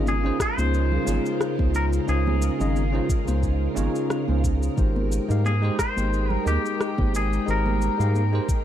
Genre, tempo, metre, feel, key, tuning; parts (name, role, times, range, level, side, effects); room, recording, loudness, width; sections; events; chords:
sunset chillout; 89 BPM; 4/4; swing 55% on 16ths; A4 = 438 Hz
barky tine electric piano; accompaniment; 0.0-8.5 s; Db3 to F5; -28 LUFS; right 1 dB; auto-pan, digital delay, shimmer reverb
soft string machine; sustained chords; 0.0-8.6 s; Db3 to G5; -30 LUFS; right 1 dB; ensemble chorus, shimmer reverb
round analog bass; bass; 0.0-8.4 s; Ab1 to Ab2; -23 LUFS; equal
twangy electric guitar; melody; 0.1-8.6 s; G4 to C5; -30 LUFS; left 3 dB; ping-pong delay, shimmer reverb
electronic shaker and rim click; drums; 0.1-8.6 s; -31 LUFS; left 2 dB; small room reverb
congas; percussion; 0.1-8.3 s; -35 LUFS; left 1 dB
electronic kick drum; drums; 0.4-8.6 s; -24 LUFS; equal; small room reverb
light reverb; dark, warm production; -21 LUFS; side -10 dB against mid
0.0-8.6 A section
0.0 Dbmaj7; 4.8 Abmaj9